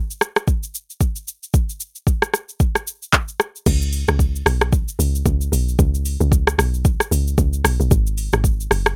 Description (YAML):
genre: amapiano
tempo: 113 BPM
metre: 4/4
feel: swing 58% on 16ths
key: unclear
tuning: A4 = 440 Hz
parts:
  - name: smooth R&B drum kit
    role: drums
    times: 0.1-9.0 s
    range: crash cymbal, handclaps, hi-hat, kick drum, rim click, shaker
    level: -20 LUFS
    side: equal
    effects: none
  - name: woody log drum bass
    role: bass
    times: 3.7-9.0 s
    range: F#1 to C#2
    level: -22 LUFS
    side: equal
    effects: none
room: little or no reverb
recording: none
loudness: -20 LUFS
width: mono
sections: 0.0-3.7 A section; 3.7-9.0 B section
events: drop 3.7-9.0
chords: none